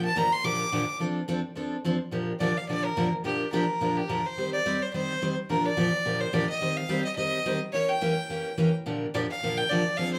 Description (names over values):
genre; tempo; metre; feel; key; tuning
country; 214 BPM; 4/4; swing 60% on 8ths; Bb major; A4 = 440 Hz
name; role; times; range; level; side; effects
clear fiddle; melody; 0.0-10.2 s; G4 to D6; -30 LUFS; equal; none
picked steel-string acoustic guitar; accompaniment; 0.0-10.2 s; Bb2 to C5; -30 LUFS; equal; none
room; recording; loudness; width
wet large studio reverb, RT60 0.9 s; band playing live in one room; -28 LUFS; mono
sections
0.0-2.1 A section; 2.1-10.2 B section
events
fiddle solo 0.0-2.1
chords
0.0 Bb6; 1.0 F6; 2.1 Bb6; 4.4 Eb6; 5.5 Bb6; 6.6 Eb6; 7.7 Edim7; 8.9 Bb6